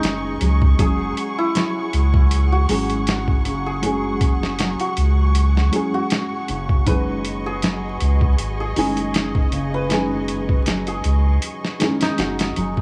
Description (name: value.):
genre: trip hop.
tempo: 79 BPM.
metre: 4/4.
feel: swing 55% on 16ths.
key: unclear.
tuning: A4 = 440 Hz.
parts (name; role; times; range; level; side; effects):
santur; melody; 0.0-12.8 s; D#4 to B4; -30 LUFS; equal; tape echo.
felt-muted upright piano; accompaniment; 0.0-12.8 s; D#3 to G#4; -28 LUFS; equal; harmonic tremolo.
muted studio string section; sustained chords; 0.0-12.8 s; G#4 to C#6; -33 LUFS; equal; none.
soft dub sub bass; bass; 0.0-12.8 s; F#1 to C#2; -23 LUFS; equal; none.
boom bap sampler-style drum kit; drums; 0.0-12.8 s; hi-hat, kick drum, snare drum; -23 LUFS; equal; studio ambience.
nylon-string guitar; arpeggios; 0.4-12.8 s; C#3 to F#4; -32 LUFS; equal; vintage 12-bit sampler grit, digital delay.
room: studio ambience.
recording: vinyl crackle.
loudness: -20 LUFS.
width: mono.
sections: 0.0-12.8 A section.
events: none.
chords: 0.0 C#sus2/F#; 0.8 F#sus2; 6.9 C#sus2/F#.